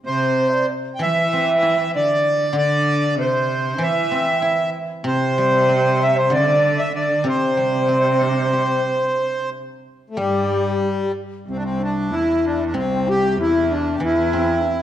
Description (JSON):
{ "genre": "chinese traditional, Chinese chamber ensemble", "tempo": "95 BPM", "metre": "4/4", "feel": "rubato", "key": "C gong mode", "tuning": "A4 = 440 Hz", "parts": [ { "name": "guzheng", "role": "accompaniment", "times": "0.0-14.8 s", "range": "C3 to G4", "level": "-26 LUFS", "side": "left 1 dB", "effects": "none" }, { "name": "accordion", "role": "melody", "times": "0.1-14.8 s", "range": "G3 to G5", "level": "-20 LUFS", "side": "right 1 dB", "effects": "none" }, { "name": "breathy bright low xiao", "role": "second line", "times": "0.1-14.8 s", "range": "C4 to E5", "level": "-23 LUFS", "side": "left 3 dB", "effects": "none" }, { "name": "rich cello", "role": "second line", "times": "0.1-14.8 s", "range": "C2 to E3", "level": "-24 LUFS", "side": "right 3 dB", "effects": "none" } ], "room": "wet recital hall reverb, RT60 1.4 s", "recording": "worn, warbling old tape, cassette tape, warbly pitch drift", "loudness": "-17 LUFS", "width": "side -11 dB against mid", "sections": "0.1-10.2 A section; 10.2-14.8 B section", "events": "none", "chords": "none" }